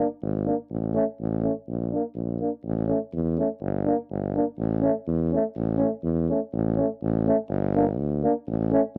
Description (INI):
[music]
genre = balkan folk, Balkan brass band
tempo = 124 BPM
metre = 2/4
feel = swing 55% on 16ths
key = unclear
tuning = A4 = 440 Hz
[part]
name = clear euphonium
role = accompaniment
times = 0.0-8.8 s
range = A3 to Bb3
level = -28 LUFS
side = equal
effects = none
[part]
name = warm euphonium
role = accompaniment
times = 0.0-8.8 s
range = C#4 to D4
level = -28 LUFS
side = equal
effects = none
[part]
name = warm tuba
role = bass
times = 0.2-9.0 s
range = G1 to E2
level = -28 LUFS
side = equal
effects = none
[sound]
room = little or no reverb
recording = dry, close 1970s-style studio recording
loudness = -26 LUFS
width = mono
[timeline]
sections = 0.0-6.5 A section; 6.5-9.0 B section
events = none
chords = 0.0 Gm (rootless); 0.7 A; 1.7 Bb; 2.6 A; 3.6 Gm; 4.6 A; 7.5 Gm; 8.5 A